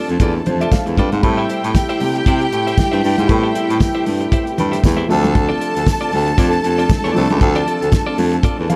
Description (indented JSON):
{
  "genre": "disco",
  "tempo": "117 BPM",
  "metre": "4/4",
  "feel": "swing 56% on 16ths",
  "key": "A minor",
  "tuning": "A4 = 440 Hz",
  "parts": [
    { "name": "rich studio string section", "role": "second line", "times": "0.0-8.8 s", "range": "G4 to A5", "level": "-24 LUFS", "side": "equal", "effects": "none" },
    { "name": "clean electric guitar", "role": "accompaniment", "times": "0.0-8.7 s", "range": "C4 to E5", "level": "-28 LUFS", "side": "equal", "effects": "none" },
    { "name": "warm concert grand piano", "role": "accompaniment", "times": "0.0-8.8 s", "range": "F3 to F5", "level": "-27 LUFS", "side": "equal", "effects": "none" },
    { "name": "dark French horn section", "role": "sustained chords", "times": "0.0-8.8 s", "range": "C3 to E4", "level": "-26 LUFS", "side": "equal", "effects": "none" },
    { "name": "warm baritone saxophone", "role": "bass", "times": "0.1-8.8 s", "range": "C2 to C3", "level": "-21 LUFS", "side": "equal", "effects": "none" },
    { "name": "damped 70s drum kit", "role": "drums", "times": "0.1-8.8 s", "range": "hi-hat, kick drum, snare drum", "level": "-20 LUFS", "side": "equal", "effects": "none" },
    { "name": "congas", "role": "percussion", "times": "0.2-8.8 s", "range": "none", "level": "-28 LUFS", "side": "equal", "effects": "none" },
    { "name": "tambourine", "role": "percussion", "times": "0.7-8.1 s", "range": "none", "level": "-40 LUFS", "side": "equal", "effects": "none" }
  ],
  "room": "light reverb, studio reverb",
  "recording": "dark, warm production",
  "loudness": "-16 LUFS",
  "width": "mono",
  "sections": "0.0-1.2 A section; 1.2-8.8 B section",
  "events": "grand piano fill 0.2-1.2, 8.4-8.8",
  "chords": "0.0 Dm7; 1.2 Am7; 5.1 Dm7"
}